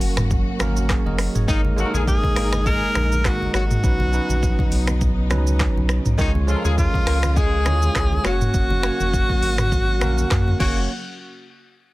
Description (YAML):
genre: afrobeats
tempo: 102 BPM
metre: 4/4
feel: swing 55% on 16ths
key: F# major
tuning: A4 = 439 Hz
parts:
  - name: bell-like tine electric piano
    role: accompaniment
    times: 0.0-10.9 s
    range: F#3 to D#5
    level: -27 LUFS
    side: right 3 dB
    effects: plate reverb
  - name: dark studio string section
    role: sustained chords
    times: 0.0-10.9 s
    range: A#2 to F#4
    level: -33 LUFS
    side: left 1 dB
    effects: plate reverb
  - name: saturated sub bass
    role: bass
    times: 0.0-10.9 s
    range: F#1 to F#2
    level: -22 LUFS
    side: equal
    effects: none
  - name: afro-pop drum kit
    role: drums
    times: 0.0-10.8 s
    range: crash cymbal, finger snaps, handclaps, hi-hat, kick drum, rim click, shaker, toms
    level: -22 LUFS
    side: equal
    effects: soft clipping on snare
  - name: congas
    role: percussion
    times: 0.2-10.9 s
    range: none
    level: -32 LUFS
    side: left 1 dB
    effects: none
  - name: warm horn section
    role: second line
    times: 1.5-10.8 s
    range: C#3 to A#4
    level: -28 LUFS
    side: left 4 dB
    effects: plate reverb
  - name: breathy tenor saxophone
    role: melody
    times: 2.1-10.9 s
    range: E#4 to A#4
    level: -24 LUFS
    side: equal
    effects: tape echo, plate reverb
room: light reverb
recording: dense, heavily limited modern master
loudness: -17 LUFS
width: side -19 dB against mid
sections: 0.0-10.9 A section; 10.9-11.9 B section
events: none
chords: 0.0 F#; 1.5 G#sus2; 3.8 Badd9; 6.2 C#; 8.2 F#; 10.9 N.C.